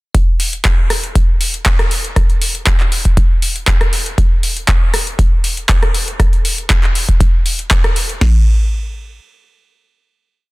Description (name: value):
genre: house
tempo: 119 BPM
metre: 4/4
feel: straight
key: none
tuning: none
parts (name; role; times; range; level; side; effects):
- booming analog drum machine; drums; 0.1-8.3 s; crash cymbal, kick drum, snare drum; -13 LUFS; equal; overdrive
- electro analog drum machine; drums; 0.1-8.2 s; handclaps, hi-hat, rim click; -17 LUFS; equal; none
room: little or no reverb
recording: dense, heavily limited modern master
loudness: -12 LUFS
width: side -22 dB against mid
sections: 0.1-8.2 groove; 8.2-10.2 final hit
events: none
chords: none